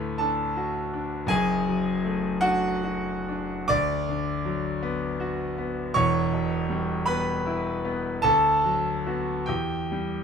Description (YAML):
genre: classical, romantic nocturne for solo piano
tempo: 44-55 BPM (dotted quarters)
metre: 6/8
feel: rubato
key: B minor from 3.7 s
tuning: A4 = 440 Hz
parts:
  - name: bright concert grand piano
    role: solo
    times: 0.0-10.2 s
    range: E1 to D6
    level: -24 LUFS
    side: equal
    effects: none
room: light reverb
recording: close, detailed microphones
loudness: -24 LUFS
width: side -6 dB against mid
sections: 0.0-10.2 A section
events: none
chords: 0.0 D; 1.3 D/F#; 3.7 Bm/D; 6.0 Em; 8.2 Bm/D; 9.5 C/E (rootless)